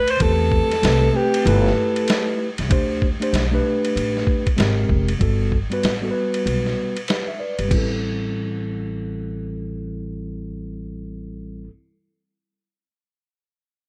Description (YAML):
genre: hip hop, jazz-hop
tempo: 96 BPM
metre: 4/4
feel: swing 62% on 16ths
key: A dorian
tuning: A4 = 440 Hz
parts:
  - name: clear alto saxophone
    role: melody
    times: 0.0-2.4 s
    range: G4 to C5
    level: -23 LUFS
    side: equal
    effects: slapback echo, plate reverb
  - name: upright bass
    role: bass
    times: 0.0-11.7 s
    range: F1 to E2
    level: -26 LUFS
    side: equal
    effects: none
  - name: boom bap sampler-style drum kit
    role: drums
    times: 0.1-7.9 s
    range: crash cymbal, hi-hat, kick drum, ride cymbal, snare drum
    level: -26 LUFS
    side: equal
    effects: none
  - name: mellow tine electric piano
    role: accompaniment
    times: 0.2-11.7 s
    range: G3 to E5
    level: -26 LUFS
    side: equal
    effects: plate reverb
room: light reverb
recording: dark, warm production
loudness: -21 LUFS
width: mono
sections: 0.0-2.7 A section; 2.7-7.7 B section; 7.7-10.2 C section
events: kick muted 1.5-2.7; break 6.5-7.7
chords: 0.2 Am9/E; 1.5 G69; 2.7 D7sus4; 4.6 G#maj9; 5.2 Gmaj9; 7.7 Am7